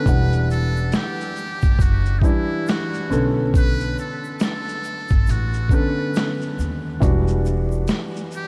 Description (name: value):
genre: lo-fi hip hop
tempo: 69 BPM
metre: 4/4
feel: swing 59% on 16ths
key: E dorian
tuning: A4 = 440 Hz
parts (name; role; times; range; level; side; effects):
- trumpet with metal mute; melody; 0.0-8.5 s; D#4 to B4; -32 LUFS; equal; tape echo
- felt-muted upright piano; accompaniment; 0.0-8.5 s; D3 to F#5; -27 LUFS; equal; cassette tape
- upright bass; bass; 0.1-7.8 s; E1 to D#2; -23 LUFS; equal; none
- boom bap sampler-style drum kit; drums; 0.1-8.5 s; hi-hat, kick drum, shaker, snare drum; -23 LUFS; equal; vintage 12-bit sampler grit
- egg shaker; percussion; 0.1-8.5 s; none; -55 LUFS; equal; none
room: light reverb, small room ambience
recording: vinyl crackle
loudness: -21 LUFS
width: mono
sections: 0.1-8.5 A section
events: none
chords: 0.1 Em9; 3.1 Bm9; 7.0 Em9